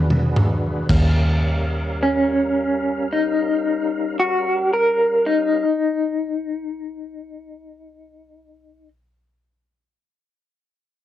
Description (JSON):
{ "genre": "slow blues", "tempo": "37 BPM (dotted quarters)", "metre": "12/8", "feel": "straight", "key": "Eb mixolydian", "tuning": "A4 = 440 Hz", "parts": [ { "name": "tonewheel organ", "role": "sustained chords", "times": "0.0-5.7 s", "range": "G3 to F5", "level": "-29 LUFS", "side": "right 1 dB", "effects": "slow rotary speaker, overdrive, chorus vibrato, cassette tape" }, { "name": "vintage muted fingered electric bass", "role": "bass", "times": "0.0-5.7 s", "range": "Eb2 to E2", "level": "-21 LUFS", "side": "equal", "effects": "tube saturation" }, { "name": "raw garage drum kit", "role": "drums", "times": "0.1-1.2 s", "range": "crash cymbal, kick drum, toms", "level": "-21 LUFS", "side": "equal", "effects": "cassette tape" }, { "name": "electric guitar through a small old amp", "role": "melody", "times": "2.0-8.9 s", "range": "Db4 to Bb4", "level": "-19 LUFS", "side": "left 1 dB", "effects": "tremolo, cassette tape" } ], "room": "light reverb", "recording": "home recording on cassette, faint mains hum", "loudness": "-18 LUFS", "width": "side -12 dB against mid", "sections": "0.9-7.4 A section", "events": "drum fill 0.0-0.9", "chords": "0.0 E9; 0.9 Eb9" }